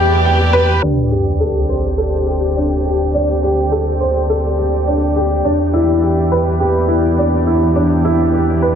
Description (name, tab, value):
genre	piano and strings electronica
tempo	104 BPM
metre	4/4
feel	straight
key	unclear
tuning	A4 = 440 Hz
part	dark chamber string section	sustained chords	0.0-8.8 s	D3 to D5	-20 LUFS	right 1 dB	none
part	clear upright piano	riff	0.0-8.8 s	D4 to G5	-15 LUFS	equal	wide subtle chorus, diffuse ambient delay
part	warm sub bass	bass	0.0-8.8 s	D2 to E2	-19 LUFS	equal	tube saturation
part	sub drop	sound effects	0.8-3.1 s	none	-21 LUFS	equal	none
room	wet lush hall reverb, RT60 2.9 s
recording	dreamy mix soaked in reverb, low-pass filter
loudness	-13 LUFS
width	side -8 dB against mid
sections	0.8-8.8 A section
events	impact 0.8-3.1; filter sweep 0.8-8.8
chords	0.0 Em7; 0.8 D7sus4; 5.4 Em7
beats	0.26 | 0.83 1.41 1.99 2.56 | 3.14 3.72 4.30 4.87 | 5.45 6.03 6.60 7.18 | 7.76 8.33